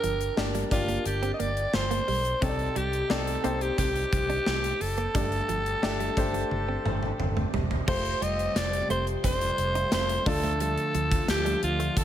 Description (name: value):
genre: 1980s-style pop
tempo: 88 BPM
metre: 4/4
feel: straight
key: unclear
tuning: A4 = 440 Hz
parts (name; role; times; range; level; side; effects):
- raspy alto saxophone; melody; 0.0-12.0 s; F4 to Eb5; -29 LUFS; equal; digital delay, shimmer reverb
- clear grand piano; accompaniment; 0.0-12.0 s; G2 to D5; -34 LUFS; left 2 dB; shimmer reverb
- direct-recorded clean electric guitar; riff; 0.0-12.0 s; F3 to Eb4; -37 LUFS; right 8 dB; analog chorus, shimmer reverb
- vintage muted fingered electric bass; bass; 0.0-12.0 s; E1 to D2; -32 LUFS; equal; none
- gated 80s drum kit; drums; 0.0-12.0 s; crash cymbal, hi-hat, kick drum, snare drum, toms; -30 LUFS; equal; gated reverb
- sweeping resonant pad; sustained chords; 7.9-12.0 s; C3 to F4; -35 LUFS; equal; chorus
room: light reverb, studio ambience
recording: none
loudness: -25 LUFS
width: side -11 dB against mid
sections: 0.0-7.9 A section; 7.9-12.0 B section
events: drum fill 6.5-7.9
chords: 0.0 Gm; 2.4 Cmadd9; 5.1 Gsus2; 7.9 Fadd9; 10.3 Dm